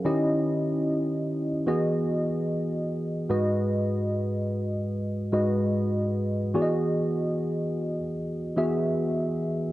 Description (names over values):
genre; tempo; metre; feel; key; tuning
R&B; 74 BPM; 4/4; straight; unclear; A4 = 436 Hz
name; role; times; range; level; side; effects
tine electric piano; solo; 0.0-9.7 s; G#2 to E5; -24 LUFS; equal; analog chorus
room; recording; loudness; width
light reverb; home recording on cassette; -24 LUFS; side -16 dB against mid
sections
0.0-3.3 A section; 3.3-9.7 B section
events
none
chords
0.1 D#7b9; 1.7 Emaj7; 3.3 G#m7; 6.5 Emaj9